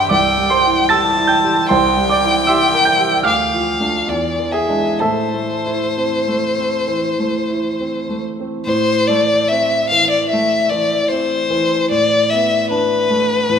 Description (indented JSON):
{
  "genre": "classical, romantic duo for violin and grand piano",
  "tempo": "62-78 BPM",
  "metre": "4/4",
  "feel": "rubato",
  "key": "A minor",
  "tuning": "A4 = 440 Hz",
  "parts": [
    { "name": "rich violin", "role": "melody", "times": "0.0-13.6 s", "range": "B4 to A5", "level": "-16 LUFS", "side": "left 2 dB", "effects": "none" },
    { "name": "clear grand piano", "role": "accompaniment", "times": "0.0-13.6 s", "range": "C2 to A6", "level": "-18 LUFS", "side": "right 2 dB", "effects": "none" }
  ],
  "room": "moderate concert hall reverb, RT60 2.1 s",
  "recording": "minimal, uncompressed stereo recording",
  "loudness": "-14 LUFS",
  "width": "side -7 dB against mid",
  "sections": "0.0-8.7 A section; 8.7-13.6 A section",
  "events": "none",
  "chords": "0.1 C; 1.7 C7; 3.3 Dm; 4.1 E7b9; 5.0 Am; 11.9 Asus24"
}